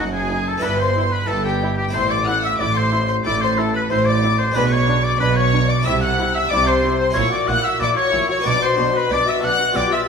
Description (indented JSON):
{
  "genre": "classical, baroque-style concerto movement with solo episodes",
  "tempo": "92 BPM",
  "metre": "4/4",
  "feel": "straight",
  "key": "unclear",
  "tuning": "A4 = 438 Hz",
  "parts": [
    { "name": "clear oboe", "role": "melody", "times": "0.0-10.1 s", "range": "G4 to F#5", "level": "-22 LUFS", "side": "left 2 dB", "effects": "none" },
    { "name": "rich studio violin section", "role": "melody", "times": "0.0-10.1 s", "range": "F#5 to F#6", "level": "-24 LUFS", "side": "left 2 dB", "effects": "none" },
    { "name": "warm chamber violin section", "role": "second line", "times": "0.0-10.0 s", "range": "G4 to F#5", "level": "-23 LUFS", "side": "left 5 dB", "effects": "none" },
    { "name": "dark chamber viola section", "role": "accompaniment", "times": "0.0-10.1 s", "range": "D4 to G4", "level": "-28 LUFS", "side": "equal", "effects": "none" },
    { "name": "harpsichord", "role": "accompaniment", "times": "0.0-10.1 s", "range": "F#2 to G#4", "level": "-29 LUFS", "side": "equal", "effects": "none" },
    { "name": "rich chamber double bass section", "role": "bass", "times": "0.0-9.8 s", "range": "F#1 to C2", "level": "-24 LUFS", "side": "right 4 dB", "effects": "none" },
    { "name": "warm chamber cello section", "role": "bass", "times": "0.0-9.8 s", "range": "F#2 to C3", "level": "-24 LUFS", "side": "right 2 dB", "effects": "none" }
  ],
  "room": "wet recital hall reverb, RT60 1.3 s",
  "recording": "minimal, uncompressed stereo recording",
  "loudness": "-16 LUFS",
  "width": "side -6 dB against mid",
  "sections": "0.0-10.1 A section",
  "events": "none",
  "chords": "0.0 D#dim/F#; 0.6 Em/G; 1.9 A5; 4.6 G#dim/B; 5.9 Am/C; 7.2 F#7/A#; 8.5 Bm"
}